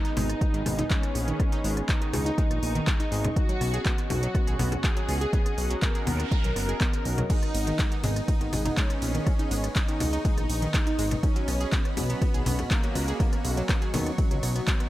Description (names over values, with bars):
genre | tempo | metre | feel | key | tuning
melodic techno | 122 BPM | 4/4 | straight | G# minor | A4 = 440 Hz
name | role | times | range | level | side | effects
soft supersaw | melody | 0.0-14.9 s | F#3 to A#4 | -34 LUFS | equal | sidechain pumping, analog delay
rich symphonic violin section | second line | 0.0-13.6 s | A#3 to A#4 | -39 LUFS | equal | sidechain pumping, analog delay
sweeping resonant pad | sustained chords | 0.0-14.9 s | B3 to C#6 | -37 LUFS | equal | chorus, sidechain pumping
analog pluck | arpeggios | 0.0-14.9 s | D#3 to G#4 | -34 LUFS | right 1 dB | chorus, sidechain pumping, analog delay
deep house drum kit | drums | 0.0-14.9 s | congas, crash cymbal, handclaps, hi-hat, ride cymbal, rim click | -32 LUFS | left 1 dB | none
fat analog bass | bass | 0.2-14.6 s | F#1 to D#2 | -28 LUFS | equal | sidechain pumping
electronic kick drum | drums | 0.4-14.8 s | none | -26 LUFS | equal | none
noise sweep | sound effects | 6.0-7.3 s | none | -41 LUFS | right 4 dB | none
room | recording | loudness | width
light reverb | none | -24 LUFS | side -15 dB against mid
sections
0.0-14.9 A section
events
noise sweep 6.0-7.3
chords
0.0 G#m; 3.4 Badd9; 7.3 G#m; 11.2 Badd9